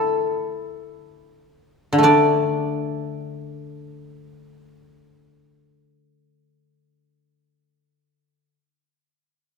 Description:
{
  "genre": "chinese traditional, Chinese solo plucked strings",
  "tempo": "free time",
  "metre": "none",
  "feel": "none",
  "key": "unclear",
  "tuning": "A4 = 441 Hz",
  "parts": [
    { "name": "guzheng", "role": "solo", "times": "0.0-8.6 s", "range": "D3 to D5", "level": "-19 LUFS", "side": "left 1 dB", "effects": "none" }
  ],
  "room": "moderate concert hall reverb, RT60 1.9 s",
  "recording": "none",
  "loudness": "-18 LUFS",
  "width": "side -5 dB against mid",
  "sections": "0.0-2.0 A section; 2.0-6.3 B section",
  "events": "slowing down 0.0-2.0",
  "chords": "none"
}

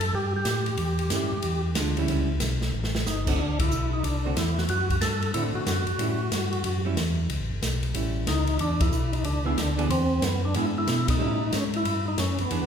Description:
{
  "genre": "soul jazz organ trio",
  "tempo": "184 BPM",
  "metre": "4/4",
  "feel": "swing 64% on 8ths",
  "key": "A mixolydian",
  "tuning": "A4 = 442 Hz",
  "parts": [
    { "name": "percussive tonewheel organ", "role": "melody", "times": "0.0-12.7 s", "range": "B3 to A4", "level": "-29 LUFS", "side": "equal", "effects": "slow rotary speaker, overdrive, chorus vibrato" },
    { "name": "mellow tonewheel organ", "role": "bass", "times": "0.0-12.7 s", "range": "G1 to B2", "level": "-27 LUFS", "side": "equal", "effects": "overdrive, chorus vibrato, slow rotary speaker" },
    { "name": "swinging big-band drum kit", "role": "drums", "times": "0.0-12.6 s", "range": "crash cymbal, hi-hat, kick drum, ride cymbal, snare drum", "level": "-30 LUFS", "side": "equal", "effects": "none" },
    { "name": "archtop guitar, miked and amplified", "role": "accompaniment", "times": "1.1-12.7 s", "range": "D3 to G#4", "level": "-32 LUFS", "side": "right 4 dB", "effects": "none" }
  ],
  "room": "wet recital hall reverb, RT60 1.7 s",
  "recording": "recorded in a church or concert hall",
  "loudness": "-23 LUFS",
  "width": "side -8 dB against mid",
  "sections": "0.0-12.7 A section",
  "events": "drum fill 2.7-3.1; band accent 3.6, 8.8, 11.0",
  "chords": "0.0 A7; 3.4 D7; 6.0 A7; 8.6 E7; 11.2 A7"
}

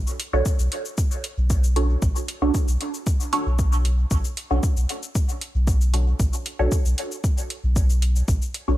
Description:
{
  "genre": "dub techno",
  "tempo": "115 BPM",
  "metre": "4/4",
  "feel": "straight",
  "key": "B minor",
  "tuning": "A4 = 440 Hz",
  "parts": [
    { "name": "pure sine sub bass", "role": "bass", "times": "0.0-8.8 s", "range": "B1", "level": "-20 LUFS", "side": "equal", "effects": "sidechain pumping" },
    { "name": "electronic cabasa and hi-hat", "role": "drums", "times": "0.1-8.7 s", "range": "none", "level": "-32 LUFS", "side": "left 2 dB", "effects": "overdrive, studio reverb" },
    { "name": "filtered dub chord stab", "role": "stabs", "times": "0.3-8.8 s", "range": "D4 to C#5", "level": "-27 LUFS", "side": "right 2 dB", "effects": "phaser, sidechain pumping, dub echo" },
    { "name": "electronic kick drum", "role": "drums", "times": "0.5-8.4 s", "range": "none", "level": "-22 LUFS", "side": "equal", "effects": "overdrive, studio reverb" }
  ],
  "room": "digital ambience",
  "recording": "none",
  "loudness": "-20 LUFS",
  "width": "side -15 dB against mid",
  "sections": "0.0-8.8 A section",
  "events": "none",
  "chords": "0.0 Bm9"
}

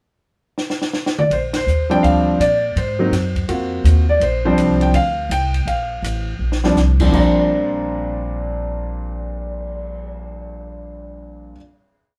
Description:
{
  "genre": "jazz piano trio",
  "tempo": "165 BPM",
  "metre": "4/4",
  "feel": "swing 64% on 8ths",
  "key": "Bb major",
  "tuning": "A4 = 439 Hz",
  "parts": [
    { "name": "compact cocktail drum kit", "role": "drums", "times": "0.6-10.0 s", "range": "crash cymbal, cymbal swell, hi-hat, kick drum, ride cymbal, snare drum, toms", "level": "-28 LUFS", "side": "equal", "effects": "none" },
    { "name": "clear concert grand piano", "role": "melody", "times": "1.2-11.6 s", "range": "Bb2 to Bb5", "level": "-21 LUFS", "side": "equal", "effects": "none" },
    { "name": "upright bass", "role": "bass", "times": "1.3-11.5 s", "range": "A1 to Bb2", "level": "-22 LUFS", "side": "equal", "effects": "none" }
  ],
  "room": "moderate studio reverb, RT60 0.7 s",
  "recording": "band playing live in one room",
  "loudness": "-18 LUFS",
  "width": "mono",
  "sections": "0.0-1.3 pickup bar; 1.3-7.1 A section; 7.1-10.1 final chord",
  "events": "drum fill 0.6-1.3, 6.4-6.8; band accent 1.5",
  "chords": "0.0 N.C.; 1.3 Bb69; 2.8 Ab9; 4.2 Bb69"
}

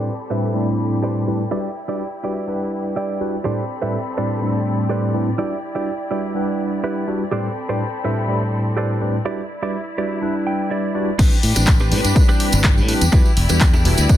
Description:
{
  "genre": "filtered disco house",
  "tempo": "124 BPM",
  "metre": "4/4",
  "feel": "swing 53% on 16ths",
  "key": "A dorian",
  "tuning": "A4 = 440 Hz",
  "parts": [
    { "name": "tine electric piano", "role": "accompaniment", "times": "0.0-14.2 s", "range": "A2 to B5", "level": "-22 LUFS", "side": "equal", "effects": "medium tremolo, phaser, sidechain pumping, low-pass filter" },
    { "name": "clear symphonic string section", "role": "sustained chords", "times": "0.0-14.2 s", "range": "C4 to B5", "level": "-28 LUFS", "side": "left 2 dB", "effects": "sidechain pumping, low-pass filter" },
    { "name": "direct-recorded clean electric guitar", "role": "riff", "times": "0.0-14.0 s", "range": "C4 to G5", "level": "-27 LUFS", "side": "right 5 dB", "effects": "sidechain pumping, low-pass filter" },
    { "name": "modern bright fingered electric bass", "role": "bass", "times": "11.2-14.1 s", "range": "E1 to A2", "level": "-18 LUFS", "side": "equal", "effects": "sidechain pumping, low-pass filter" },
    { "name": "electronic kick drum", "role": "drums", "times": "11.2-14.2 s", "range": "none", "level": "-15 LUFS", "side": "equal", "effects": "small room ambience" },
    { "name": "punchy analog drum machine", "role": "drums", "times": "11.2-14.2 s", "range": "crash cymbal, handclaps, hi-hat", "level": "-23 LUFS", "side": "left 1 dB", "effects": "sidechain pumping on cymbals, small room ambience, sidechain pumping on hats" },
    { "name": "tambourine", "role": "percussion", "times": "11.2-14.2 s", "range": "none", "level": "-27 LUFS", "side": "right 3 dB", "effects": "sidechain pumping on perc, low-pass filter on perc" }
  ],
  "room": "light reverb",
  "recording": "none",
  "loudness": "-17 LUFS",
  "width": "side -12 dB against mid",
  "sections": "0.0-11.2 A section; 11.2-14.2 B section",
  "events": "filter sweep 0.0-11.2; clean electric guitar fill 10.2-11.2; drop 11.2-14.2",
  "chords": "0.0 Am11; 1.5 Em7; 3.4 Am11; 5.4 Em7; 7.3 Am11; 9.3 Em7; 11.2 Am11; 13.1 Em7"
}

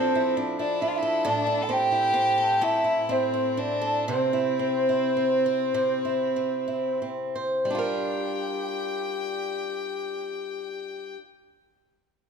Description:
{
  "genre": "celtic folk, Celtic slow air",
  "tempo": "29-46 BPM (dotted quarters)",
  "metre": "6/8",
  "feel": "rubato",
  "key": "G dorian",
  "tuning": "A4 = 441 Hz",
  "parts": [
    { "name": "mellow hollow baroque flute", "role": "melody", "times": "0.0-11.2 s", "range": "G4 to A5", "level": "-26 LUFS", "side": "right 1 dB", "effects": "none" },
    { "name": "bright fiddle", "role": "second line", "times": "0.0-11.2 s", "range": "C4 to G5", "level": "-31 LUFS", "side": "left 4 dB", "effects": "slapback echo" },
    { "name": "picked swing-style acoustic guitar", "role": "accompaniment", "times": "0.0-11.3 s", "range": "A2 to C5", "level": "-28 LUFS", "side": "right 2 dB", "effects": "none" }
  ],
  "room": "moderate scoring stage reverb, RT60 1.5 s",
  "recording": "none",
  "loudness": "-23 LUFS",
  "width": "side -6 dB against mid",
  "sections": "0.0-7.7 A section; 7.7-11.8 B section",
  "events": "slowing down 1.3-7.7",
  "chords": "0.0 Dmadd9/F; 1.3 Am7; 4.1 C; 7.7 Gm7"
}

